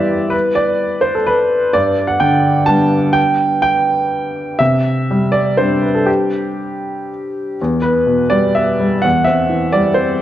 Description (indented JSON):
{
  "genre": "neoclassical minimalist piano",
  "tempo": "125 BPM",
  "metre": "3/4",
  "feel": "rubato",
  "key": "unclear",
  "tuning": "A4 = 439 Hz",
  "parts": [
    { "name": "warm upright piano", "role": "solo", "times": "0.0-10.2 s", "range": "E2 to A5", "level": "-13 LUFS", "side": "equal", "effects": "none" }
  ],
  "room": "wet scoring stage reverb, RT60 2.1 s",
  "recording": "worn, warbling old tape, cassette tape, warbly pitch drift",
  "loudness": "-12 LUFS",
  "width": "side -12 dB against mid",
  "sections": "0.0-7.6 A section; 7.6-10.2 B section",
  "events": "none",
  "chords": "0.0 Em/G; 1.7 G; 4.6 Cadd9; 7.6 Em; 9.0 C/E",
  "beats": "| 0.33 0.80 1.27 | 1.75 2.22 2.69 | 3.16 3.64 4.11 | 4.59 5.08 5.57 | 6.07 6.58 7.08 | 7.59 8.07 8.56 | 9.04 9.52 10.00"
}